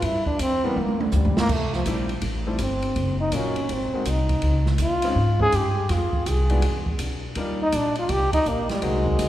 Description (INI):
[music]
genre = jazz, big band swing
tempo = 164 BPM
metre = 4/4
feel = swing 64% on 8ths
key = unclear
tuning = A4 = 440 Hz
[part]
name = breathy trombone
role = melody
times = 0.0-9.3 s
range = D3 to Ab4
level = -24 LUFS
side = equal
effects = none
[part]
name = upright bass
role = bass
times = 0.0-9.3 s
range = Gb1 to Ab2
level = -24 LUFS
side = equal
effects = none
[part]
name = open jazz drum kit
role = drums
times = 0.0-9.3 s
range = crash cymbal, hi-hat, kick drum, ride cymbal, snare drum, toms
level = -28 LUFS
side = right 1 dB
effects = none
[part]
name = clear grand piano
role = accompaniment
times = 0.6-9.3 s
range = E3 to Gb4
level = -31 LUFS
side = left 2 dB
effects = none
[sound]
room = wet church reverb, RT60 2.5 s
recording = recorded in a church or concert hall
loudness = -20 LUFS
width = side -13 dB against mid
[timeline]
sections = 0.0-1.5 A section; 1.5-9.3 A section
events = trombone solo 0.0-9.3; drum fill 0.8-1.5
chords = 0.0 Gm7; 0.8 Gm6; 1.5 Fmaj9; 3.0 Ebm9; 3.7 Ab9; 4.4 Dbmaj9; 5.9 Fm; 6.6 E5; 7.4 Ebmaj7